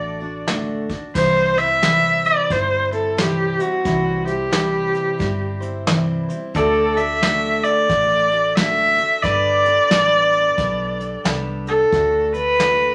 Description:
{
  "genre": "honky-tonk and classic country",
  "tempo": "89 BPM",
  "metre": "4/4",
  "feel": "swing 62% on 8ths",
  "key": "unclear",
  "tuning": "A4 = 440 Hz",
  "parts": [
    { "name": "rich viola", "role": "melody", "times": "0.0-12.9 s", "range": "F#4 to E5", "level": "-19 LUFS", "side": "equal", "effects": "none" },
    { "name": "picked steel-string acoustic guitar", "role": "accompaniment", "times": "0.0-12.9 s", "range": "C3 to D5", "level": "-28 LUFS", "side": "equal", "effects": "none" },
    { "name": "pedal steel guitar", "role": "sustained chords", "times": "0.0-1.1, 6.6-11.9 s", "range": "A4 to D5", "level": "-32 LUFS", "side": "equal", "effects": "none" },
    { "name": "vintage muted fingered electric bass", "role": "bass", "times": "0.0-12.9 s", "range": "G1 to D2", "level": "-32 LUFS", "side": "equal", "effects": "none" },
    { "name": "soft brush drum kit", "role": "drums", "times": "0.5-12.8 s", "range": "crash cymbal, hi-hat, kick drum, snare drum", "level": "-25 LUFS", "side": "equal", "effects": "none" }
  ],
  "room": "wet studio reverb, RT60 0.6 s",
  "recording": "none",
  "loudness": "-18 LUFS",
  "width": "mono",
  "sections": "0.0-1.2 A section; 1.2-11.9 B section; 11.9-12.9 A section",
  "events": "none",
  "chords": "0.0 D; 1.2 C; 6.5 D; 9.2 Gadd9; 11.9 D"
}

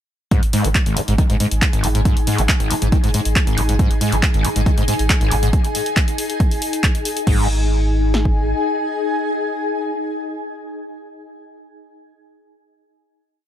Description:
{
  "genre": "driving peak-time techno",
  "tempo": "138 BPM",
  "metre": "4/4",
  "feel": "straight",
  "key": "unclear",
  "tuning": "A4 = 444 Hz",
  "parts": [
    { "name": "screaming distorted acid line", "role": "riff", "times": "0.3-7.5 s", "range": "G#1 to G#3", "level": "-21 LUFS", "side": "equal", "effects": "distortion, lush chorus, sidechain pumping, ping-pong delay" },
    { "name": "punchy analog drum machine", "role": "drums", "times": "0.3-8.4 s", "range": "kick drum, snare drum", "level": "-17 LUFS", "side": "equal", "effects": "overdrive, small room reverb" },
    { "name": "punchy analog drum machine", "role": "drums", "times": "0.3-7.4 s", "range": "crash cymbal, handclaps, hi-hat", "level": "-23 LUFS", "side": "left 1 dB", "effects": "overdrive, small room reverb" },
    { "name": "granular cloud pad", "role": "texture", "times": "1.1-10.9 s", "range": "D#4 to G#5", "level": "-24 LUFS", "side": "left 2 dB", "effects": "built-in reverb, sidechain pumping" },
    { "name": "saturated sub bass", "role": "bass", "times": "0.4-8.5 s", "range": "G#1", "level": "-20 LUFS", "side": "equal", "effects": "tube saturation, sidechain pumping, low-pass filter" }
  ],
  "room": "light reverb",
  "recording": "none",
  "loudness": "-15 LUFS",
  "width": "side -11 dB against mid",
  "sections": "0.3-7.3 drop; 7.3-10.7 final chord",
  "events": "drop 0.3-7.3",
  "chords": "0.3 G#5"
}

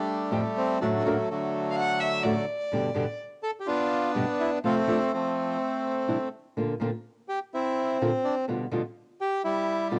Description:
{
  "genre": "tango",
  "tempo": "125 BPM",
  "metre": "4/4",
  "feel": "rubato",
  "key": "unclear",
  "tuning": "A4 = 440 Hz",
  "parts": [
    { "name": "bandoneon", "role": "melody", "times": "0.0-10.0 s", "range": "D3 to A4", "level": "-29 LUFS", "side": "equal", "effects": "cassette tape, plate reverb" },
    { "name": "nylon-string guitar", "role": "accompaniment", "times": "0.3-10.0 s", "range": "F2 to G4", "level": "-30 LUFS", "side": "equal", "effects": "cassette tape" },
    { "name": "warm violin", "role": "second line", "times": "1.7-3.2 s", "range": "D5 to F#5", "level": "-31 LUFS", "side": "equal", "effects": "cassette tape, plate reverb" }
  ],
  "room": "wet booth ambience, RT60 0.2 s",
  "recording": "home recording on cassette",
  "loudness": "-28 LUFS",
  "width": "mono",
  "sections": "0.0-10.0 A section",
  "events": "none",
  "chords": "0.0 Fadd9; 0.8 D/F#; 2.7 G; 4.6 F/C; 5.6 Cadd9; 6.6 Bbadd9; 8.5 G7/B"
}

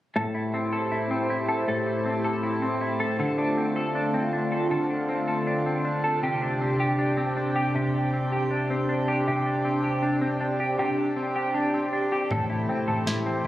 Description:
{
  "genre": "dream pop",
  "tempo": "79 BPM",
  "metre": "4/4",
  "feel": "straight",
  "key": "unclear",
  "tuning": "A4 = 439 Hz",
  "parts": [
    { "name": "phased analog pad", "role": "sustained chords", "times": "0.2-13.5 s", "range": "C3 to C5", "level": "-28 LUFS", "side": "right 1 dB", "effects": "phaser, chorus" },
    { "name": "semi-hollow electric guitar", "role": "arpeggios", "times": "0.2-13.5 s", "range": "A2 to A4", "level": "-25 LUFS", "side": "equal", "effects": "analog chorus, ping-pong delay" },
    { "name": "vintage muted picked electric bass", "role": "bass", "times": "12.3-13.5 s", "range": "A1", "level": "-31 LUFS", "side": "equal", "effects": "none" },
    { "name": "booming analog drum machine", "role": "drums", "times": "12.3-13.5 s", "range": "kick drum, snare drum, toms", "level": "-33 LUFS", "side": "equal", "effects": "overdrive" }
  ],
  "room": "moderate shimmer reverb, RT60 5.9 s",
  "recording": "recorded on a phone in the room, club reverb, compression",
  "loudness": "-23 LUFS",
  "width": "side -14 dB against mid",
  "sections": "0.2-13.5 A section",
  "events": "none",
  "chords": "0.2 Am7; 3.2 Dm7; 6.2 Csus2; 12.3 Am7"
}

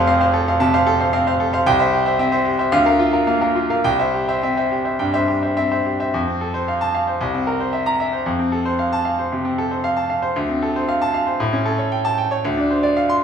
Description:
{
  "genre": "classical, virtuoso piano study",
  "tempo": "113 BPM",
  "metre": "4/4",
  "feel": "rubato",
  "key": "F major",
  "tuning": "A4 = 436 Hz",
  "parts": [
    { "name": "bright grand piano", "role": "solo", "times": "0.0-13.2 s", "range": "F1 to C6", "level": "-16 LUFS", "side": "equal", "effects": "none" }
  ],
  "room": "wet recital hall reverb, RT60 1.4 s",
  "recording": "small room ambience",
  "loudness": "-17 LUFS",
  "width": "side -7 dB against mid",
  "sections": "0.0-6.1 A section; 6.1-13.2 B section",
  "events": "none",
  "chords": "0.0 F; 1.7 C; 2.7 Bb/D; 3.8 C; 6.1 F; 7.2 C7; 8.3 F; 10.4 Dm7; 11.4 A7; 12.4 Dm7"
}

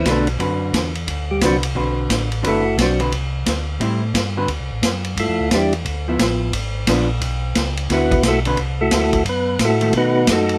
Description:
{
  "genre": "soul jazz organ trio",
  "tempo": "176 BPM",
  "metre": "4/4",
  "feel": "swing 64% on 8ths",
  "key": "D mixolydian",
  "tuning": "A4 = 440 Hz",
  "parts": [
    { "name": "percussive tonewheel organ", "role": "melody", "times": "0.0-3.0, 5.2-5.7, 7.9-10.6 s", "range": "D3 to B4", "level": "-20 LUFS", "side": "equal", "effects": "slow rotary speaker" },
    { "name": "mellow tonewheel organ", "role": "bass", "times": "0.0-10.6 s", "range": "F#1 to B2", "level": "-25 LUFS", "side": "equal", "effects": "slow rotary speaker" },
    { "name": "vintage hollow-body jazz guitar", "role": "accompaniment", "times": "0.1-10.3 s", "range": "D3 to B4", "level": "-25 LUFS", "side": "equal", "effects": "none" },
    { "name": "vintage drum kit", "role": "drums", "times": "0.1-10.6 s", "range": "hi-hat, kick drum, ride cymbal, snare drum", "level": "-24 LUFS", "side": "equal", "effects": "none" }
  ],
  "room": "light reverb",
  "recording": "none",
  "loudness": "-19 LUFS",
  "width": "mono",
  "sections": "0.0-10.6 A section",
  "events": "tonewheel organ solo 0.0-10.6",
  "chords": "0.0 D13; 3.8 Am7; 4.5 D7; 5.2 G13; 6.5 G#dim7; 7.9 D13; 9.3 F#m7; 9.9 B7"
}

